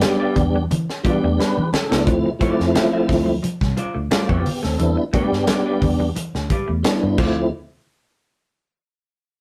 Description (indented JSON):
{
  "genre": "funk",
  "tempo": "88 BPM",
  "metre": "4/4",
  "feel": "straight",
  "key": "D dorian",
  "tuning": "A4 = 440 Hz",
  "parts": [
    { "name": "vintage hollow-body jazz guitar", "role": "accompaniment", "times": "0.0-7.4 s", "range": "F4 to E5", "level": "-29 LUFS", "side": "equal", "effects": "none" },
    { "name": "clean electric guitar", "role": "riff", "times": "0.0-7.4 s", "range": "E3 to D4", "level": "-30 LUFS", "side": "equal", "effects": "harmonic tremolo" },
    { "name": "mellow tonewheel organ", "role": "stabs", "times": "0.0-7.5 s", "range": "F3 to B4", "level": "-22 LUFS", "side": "equal", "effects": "chorus vibrato, fast rotary speaker" },
    { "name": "tight funk drum kit", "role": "drums", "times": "0.0-7.4 s", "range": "crash cymbal, hi-hat, kick drum, snare drum", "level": "-25 LUFS", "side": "equal", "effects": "none" },
    { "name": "congas", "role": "percussion", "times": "0.0-7.5 s", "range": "none", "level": "-30 LUFS", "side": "equal", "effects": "none" },
    { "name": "vintage muted fingered electric bass", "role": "bass", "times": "0.4-7.5 s", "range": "C2 to E3", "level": "-26 LUFS", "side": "equal", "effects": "none" }
  ],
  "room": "moderate studio ambience, RT60 0.5 s",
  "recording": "rough rehearsal-room recording, tube saturation",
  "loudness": "-20 LUFS",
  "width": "mono",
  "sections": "0.0-2.1 A section; 2.1-7.5 B section; 7.5-9.4 C section",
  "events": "tonewheel organ fill 1.0-2.1; drum fill 1.4-2.1",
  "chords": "0.0 Em7; 2.1 Dm7; 4.8 Em7; 7.2 Dm7; 7.5 N.C."
}